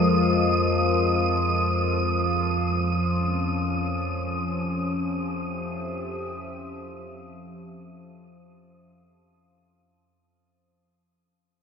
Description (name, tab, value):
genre	dark ambient drone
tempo	free time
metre	none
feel	none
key	unclear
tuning	A4 = 440 Hz
part	deep dark ambient pad	sustained chords	0.0-10.6 s	Ab3 to Fb5	-29 LUFS	left 2 dB	chorus, built-in reverb
part	organ-like drone	drone	0.0-10.7 s	F2 to F3	-26 LUFS	left 1 dB	ensemble chorus, built-in reverb, phaser
part	wind-like tuned noise texture	texture	0.0-10.6 s	Eb6	-28 LUFS	right 1 dB	built-in reverb
room	wet cathedral reverb, RT60 6.9 s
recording	in a vast, echoing space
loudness	-22 LUFS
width	side -6 dB against mid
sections	0.0-10.6 A section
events	fade-out on ambient pad 0.0-10.6; fade-out 0.0-10.6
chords	0.0 Absus2; 2.5 Dbm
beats	free time